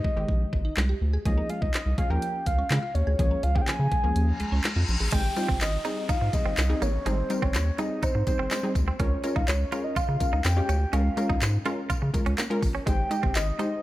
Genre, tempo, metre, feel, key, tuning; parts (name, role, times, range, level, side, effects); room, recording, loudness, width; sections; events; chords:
dance-pop; 124 BPM; 4/4; straight; Ab major; A4 = 440 Hz
soft octave-layered synth lead; melody; 0.0-13.8 s; C5 to Ab5; -31 LUFS; equal; chorus, phaser, tape echo
mallet-like synth pluck; arpeggios; 0.0-5.1 s; Ab3 to Ab4; -37 LUFS; right 2 dB; chorus, sidechain pumping, tape echo
smooth R&B drum kit; drums; 0.0-13.7 s; crash cymbal, handclaps, hi-hat, kick drum, snare drum; -28 LUFS; equal
wide unison pluck; accompaniment; 0.2-13.8 s; Eb3 to Eb5; -32 LUFS; left 1 dB; sidechain pumping
round analog bass; bass; 0.2-13.5 s; Ab1 to Db3; -26 LUFS; equal; sidechain pumping
reverse cymbal and downlifter; sound effects; 4.3-9.0 s; -37 LUFS; left 2 dB
direct-recorded clean electric guitar; riff; 5.1-13.7 s; Ab3 to F4; -34 LUFS; right 4 dB; analog chorus
tambourine; percussion; 5.1-13.7 s; -43 LUFS; left 5 dB
light reverb; -23 LUFS; side -16 dB against mid
0.0-5.1 A section; 5.1-13.8 B section
kick muted 4.2-5.1; reverse cymbal 4.3-5.1
0.0 Abmaj7; 1.3 Db6; 5.1 Abmaj7; 9.0 Db6; 12.9 Abmaj7